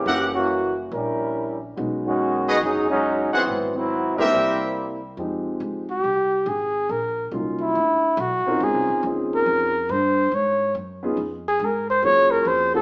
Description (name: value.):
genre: jazz, big band swing.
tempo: 140 BPM.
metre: 4/4.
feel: swing 66% on 8ths.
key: F minor from 5.2 s.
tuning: A4 = 438 Hz.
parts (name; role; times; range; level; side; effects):
mellow trombone section; second line; 0.0-5.0 s; D#3 to A#4; -22 LUFS; equal; none.
upright bass; bass; 0.0-12.8 s; F#1 to Ab2; -32 LUFS; equal; none.
dark grand piano; accompaniment; 0.1-12.8 s; F3 to Bb4; -26 LUFS; equal; none.
warm trumpet section; stabs; 0.1-4.7 s; F#4 to F#5; -22 LUFS; equal; none.
dark trumpet; melody; 5.9-12.8 s; E4 to Db5; -19 LUFS; equal; none.
room: wet large studio reverb, RT60 1.2 s.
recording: band playing live in one room, small speaker sound.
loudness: -19 LUFS.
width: side -31 dB against mid.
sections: 0.0-5.2 A section; 5.2-12.8 B section.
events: trombone section solo 0.0-5.2; trumpet solo 5.2-12.8.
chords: 0.1 F#7b9; 1.8 B69; 3.5 G#7alt; 4.3 C7; 5.2 Fm7; 6.9 Ebm7; 7.8 D9; 8.6 Dbmaj7; 10.3 Abm7; 11.2 Fmadd11; 12.0 Gbmaj7.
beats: | 0.06 0.49 0.91 1.34 | 1.77 2.20 2.62 3.05 | 3.48 3.91 4.33 4.76 | 5.19 5.62 6.04 6.47 | 6.90 7.33 7.75 8.18 | 8.61 9.04 9.46 9.89 | 10.32 10.75 11.18 11.60 | 12.03 12.46.